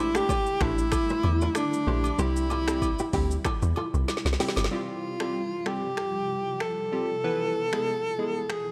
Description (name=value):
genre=afrobeats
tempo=95 BPM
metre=4/4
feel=swing 55% on 16ths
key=F major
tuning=A4 = 440 Hz
part: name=breathy tenor saxophone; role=melody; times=0.0-8.7 s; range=D4 to A4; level=-31 LUFS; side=equal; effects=none
part: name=warm analog keys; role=accompaniment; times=0.0-8.4 s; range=E3 to B4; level=-35 LUFS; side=equal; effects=chorus
part: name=granular cloud pad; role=sustained chords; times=0.0-8.7 s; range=B2 to F4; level=-39 LUFS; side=equal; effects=built-in reverb
part: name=kora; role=riff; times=0.0-4.5 s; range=E4 to E5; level=-39 LUFS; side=equal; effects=tape echo
part: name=deep log drum bass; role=bass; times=0.0-4.7 s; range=G1 to E2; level=-29 LUFS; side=equal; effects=none
part: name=afro-pop drum kit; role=drums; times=0.1-8.7 s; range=finger snaps, hi-hat, kick drum, rim click, shaker, snare drum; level=-33 LUFS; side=equal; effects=none
part: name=agogo bells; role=percussion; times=0.3-4.7 s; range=none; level=-40 LUFS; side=equal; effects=none
room=light reverb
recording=none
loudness=-27 LUFS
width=mono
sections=0.0-4.7 A section; 4.7-8.7 B section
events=drum fill 4.1-4.7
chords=0.0 A7sus4; 2.2 C; 4.7 Fsus2; 7.2 E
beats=0.29 0.92 1.55 | 2.19 2.82 3.45 4.08 | 4.71 5.34 5.98 6.61 | 7.24 7.87 8.50